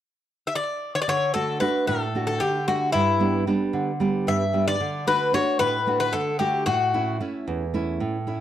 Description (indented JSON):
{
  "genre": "greek folk, Greek bouzouki band",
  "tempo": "225 BPM (eighths)",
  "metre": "7/8",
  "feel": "straight",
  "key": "D major",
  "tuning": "A4 = 440 Hz",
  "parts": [
    { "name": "Greek bouzouki", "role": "melody", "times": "0.5-7.2 s", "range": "E4 to E5", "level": "-23 LUFS", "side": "left 3 dB", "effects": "slapback echo" },
    { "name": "nylon-string guitar", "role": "accompaniment", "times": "1.1-8.4 s", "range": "E2 to F#4", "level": "-25 LUFS", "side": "right 3 dB", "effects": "none" }
  ],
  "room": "studio reverb",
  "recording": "dry, close 1970s-style studio recording",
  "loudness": "-21 LUFS",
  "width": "side -11 dB against mid",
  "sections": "0.0-1.1 A section; 1.1-8.4 B section",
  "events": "none",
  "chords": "0.0 N.C.; 1.1 D; 2.9 G; 4.8 D; 6.7 A",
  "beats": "0.01 0.28 0.54 0.81 | 1.08 1.34 1.61 1.88 2.14 2.41 2.68 | 2.94 3.21 3.48 3.74 4.01 4.28 4.54 | 4.81 5.08 5.34 5.61 5.88 6.14 6.41 | 6.67 6.94 7.21 7.47 7.74 8.01 8.27"
}